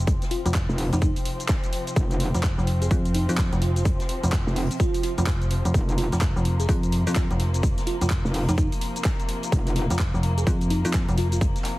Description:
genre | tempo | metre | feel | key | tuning
bass house | 127 BPM | 4/4 | swing 62% on 16ths | unclear | A4 = 440 Hz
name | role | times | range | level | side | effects
muted chamber string section | sustained chords | 0.0-11.8 s | C3 to C4 | -33 LUFS | left 2 dB | sidechain pumping, low-pass filter
metallic FM bass | bass | 0.0-11.5 s | F1 to F2 | -23 LUFS | equal | overdrive, sidechain pumping
electronic kick drum | drums | 0.1-11.5 s | none | -24 LUFS | equal | overdrive, small room reverb
garage drum kit | drums | 0.1-11.8 s | handclaps, hi-hat, shaker | -33 LUFS | equal | overdrive, small room reverb
unplugged drum kit | drums | 0.1-11.8 s | hi-hat, snare drum | -44 LUFS | left 2 dB | none
bell-like FM electric piano | melody | 0.3-11.4 s | C4 to Ab4 | -33 LUFS | right 1 dB | chorus, phaser, tape echo
metallic wobble bass | bass | 0.7-9.9 s | F1 | -24 LUFS | equal | chorus, sidechain pumping
room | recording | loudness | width
little or no reverb | heavily compressed radio sound | -21 LUFS | side -18 dB against mid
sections
0.0-11.8 A section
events
none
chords
0.0 F5

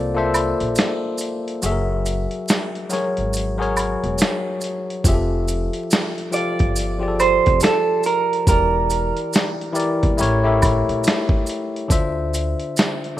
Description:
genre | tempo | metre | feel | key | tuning
lo-fi hip hop | 70 BPM | 4/4 | swing 61% on 16ths | unclear | A4 = 439 Hz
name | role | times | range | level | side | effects
bell-like tine electric piano | accompaniment | 0.0-13.2 s | D3 to F#5 | -22 LUFS | left 2 dB | low-pass filter
upright bass | bass | 0.0-12.5 s | E1 to D2 | -24 LUFS | equal | none
maracas and woodblock | percussion | 0.3-13.0 s | none | -28 LUFS | right 2 dB | none
dusty soul sampler-style drum kit | drums | 0.4-13.2 s | hi-hat, kick drum, snare drum | -20 LUFS | equal | none
electric guitar through a small old amp | melody | 6.3-10.2 s | A4 to D5 | -19 LUFS | right 5 dB | low-pass filter, analog delay
room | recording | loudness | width
moderate plate reverb, RT60 2.4 s | rough home demo mix, vinyl crackle | -18 LUFS | side -13 dB against mid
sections
0.0-13.2 A section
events
break 0.0-5.0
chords
0.0 Bbmaj9; 1.6 F#9; 5.0 Fmaj9; 8.5 Em7b5; 10.2 A7b9; 11.9 Dm9

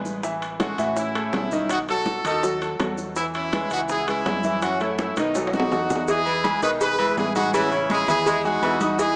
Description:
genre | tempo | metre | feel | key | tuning
latin, salsa | 164 BPM | 4/4 | straight | E major | A4 = 440 Hz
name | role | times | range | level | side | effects
clear concert grand piano | accompaniment | 0.0-9.2 s | C#3 to D#6 | -29 LUFS | equal | none
deep dub fingered electric bass | bass | 0.0-9.2 s | A1 to A2 | -38 LUFS | equal | none
congas | percussion | 0.0-9.2 s | none | -35 LUFS | equal | none
bongos and cowbell | percussion | 0.1-9.2 s | none | -33 LUFS | equal | none
maracas | percussion | 0.1-9.2 s | none | -43 LUFS | equal | none
timbales and agogo bells | percussion | 0.4-9.0 s | none | -32 LUFS | equal | none
brilliant horn section | melody | 0.6-9.2 s | B3 to B4 | -27 LUFS | equal | analog delay
bright saxophone section | second line | 6.3-8.8 s | D#3 to G#3 | -31 LUFS | equal | none
room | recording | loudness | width
moderate plate reverb, RT60 3.1 s | dreamy mix soaked in reverb, small speaker sound | -23 LUFS | mono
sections
0.0-6.1 A section; 6.1-9.2 B section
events
drum fill 5.0-6.1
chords
0.2 Amaj7; 1.7 B7; 3.2 E; 3.9 C#m7; 4.6 F#m7; 5.4 B7; 6.1 Emaj7; 7.5 Amaj7

